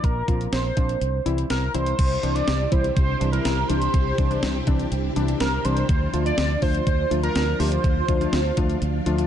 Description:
synth-pop; 123 BPM; 4/4; straight; A4 = 445 Hz
octave-doubled lead; melody; 0.0-9.1 s; Bb4 to D5; -27 LUFS; right 2 dB; chorus, phaser
fretless electric bass; bass; 0.0-9.2 s; Bb1 to D2; -25 LUFS; equal; wide subtle chorus
clean 12-bit digital drum machine; drums; 0.0-9.3 s; crash cymbal, hi-hat, kick drum, snare drum; -24 LUFS; equal
warm analog keys; accompaniment; 0.3-9.3 s; E3 to G4; -28 LUFS; left 3 dB; chorus
string machine, full ensemble; sustained chords; 2.0-9.3 s; C3 to G4; -30 LUFS; right 1 dB; phaser, ensemble chorus
light reverb; dark, warm production, nothing above 10.7 kHz; -20 LUFS; side -10 dB against mid
0.0-2.0 A section; 2.0-9.3 B section
0.0 Bbsus2; 1.0 C; 2.0 Cadd9; 5.9 Dm

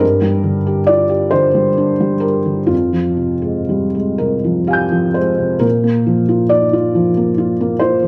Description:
neoclassical minimalist piano; 38-48 BPM (dotted quarters); 6/8; rubato; A4 = 440 Hz
felt-muted upright piano; solo; 0.0-8.1 s; F2 to G6; -15 LUFS; equal
light reverb; dark, warm production; -15 LUFS; mono
0.0-5.6 A section; 5.6-8.1 A section
0.0 Gm; 2.7 Fmadd9; 5.6 Bb

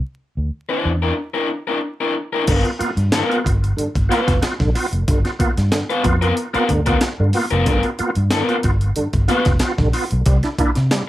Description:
funk; 92 BPM; 4/4; straight; G mixolydian; A4 = 445 Hz
vintage muted fingered electric bass; bass; 0.4-10.9 s; F1 to C3; -19 LUFS; equal
raw garage guitar; accompaniment; 0.7-9.4 s; B3 to C5; -20 LUFS; left 2 dB; overdrive
bright tonewheel organ; stabs; 2.5-11.0 s; G2 to F4; -22 LUFS; right 1 dB; chorus vibrato, fast rotary speaker, tape echo
breakbeat sampler-style drum kit; drums; 2.5-11.1 s; crash cymbal, hi-hat, kick drum, snare drum; -20 LUFS; equal
moderate studio ambience, RT60 0.5 s; vinyl crackle; -16 LUFS; side -14 dB against mid
0.0-2.5 A section; 2.5-11.1 B section
0.0 C9 (rootless); 2.5 G7#9; 10.3 C9

